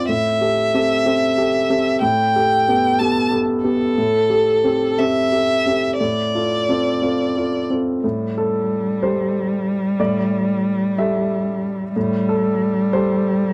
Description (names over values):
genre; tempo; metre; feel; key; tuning
neoclassical piano and strings; 61 BPM (dotted quarters); 6/8; uneven beats, rubato; unclear; A4 = 440 Hz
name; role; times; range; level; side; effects
rich violin; melody; 0.0-7.7 s; A4 to A5; -21 LUFS; equal; none
warm baby grand piano; accompaniment; 0.0-13.5 s; A2 to E5; -22 LUFS; equal; none
rich cello; second line; 8.0-13.5 s; G3; -22 LUFS; equal; none
room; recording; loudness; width
light reverb; dry, close 1970s-style studio recording; -19 LUFS; mono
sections
0.0-8.0 A section; 8.0-13.5 B section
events
none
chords
0.1 Am7; 2.0 Gadd9/A; 4.0 Am7; 6.0 Dm7/A; 8.0 Gsus2/A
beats
| 0.08 1.05 | 2.01 2.98 | 3.95 4.98 | 5.99 7.02 | 8.03 9.02 | 9.99 10.97 | 11.95 12.93